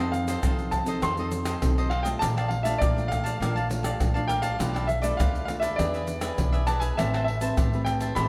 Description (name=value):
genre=samba and choro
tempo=101 BPM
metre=4/4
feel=straight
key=unclear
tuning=A4 = 442 Hz
part: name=cavaquinho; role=accompaniment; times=0.0-8.3 s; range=D4 to A5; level=-37 LUFS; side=equal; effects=none
part: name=nylon-string guitar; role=accompaniment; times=0.0-8.3 s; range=Bb2 to B4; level=-35 LUFS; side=equal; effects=none
part: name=upright bass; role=bass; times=0.0-8.3 s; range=A1 to F3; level=-32 LUFS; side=equal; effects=none
part: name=clear concert grand piano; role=melody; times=0.1-8.3 s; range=D5 to C6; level=-32 LUFS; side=equal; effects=none
part: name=egg shaker, pandeiro, surdo and tamborim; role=percussion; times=0.1-8.3 s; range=none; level=-31 LUFS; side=equal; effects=none
room=moderate plate reverb, RT60 3.3 s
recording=heard from further back in the room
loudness=-26 LUFS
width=mono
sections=0.0-8.3 A section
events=none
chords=0.0 F7; 2.2 Bbmaj7; 4.6 Bm7b5; 5.8 E7; 7.0 Am9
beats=0.43 1.03 1.62 | 2.22 2.81 3.40 4.00 | 4.59 5.19 5.79 6.38 | 6.97 7.57 8.16